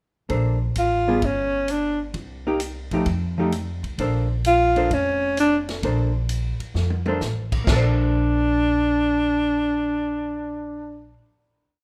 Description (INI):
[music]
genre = jazz, small-group swing and bop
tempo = 130 BPM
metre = 4/4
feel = swing 68% on 8ths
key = Bb major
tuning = A4 = 440 Hz
[part]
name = hollow-body jazz guitar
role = accompaniment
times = 0.3-11.3 s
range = F3 to C5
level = -28 LUFS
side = equal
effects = none
[part]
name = upright bass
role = bass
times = 0.3-11.1 s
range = F1 to F2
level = -28 LUFS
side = equal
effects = none
[part]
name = vintage drum kit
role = drums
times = 0.3-7.8 s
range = china cymbal, crash cymbal, hi-hat, kick drum, ride cymbal, snare drum, toms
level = -30 LUFS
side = equal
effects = none
[part]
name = clear alto saxophone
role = melody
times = 0.8-11.1 s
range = Db4 to F4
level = -23 LUFS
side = equal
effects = none
[sound]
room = light reverb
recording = none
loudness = -22 LUFS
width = mono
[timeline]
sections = 0.3-7.7 A section; 7.7-11.3 final chord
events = drum fill 6.8-7.2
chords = 0.3 Bbmaj9; 1.2 G5; 2.1 Cm7; 3.1 F9; 4.0 Bbmaj9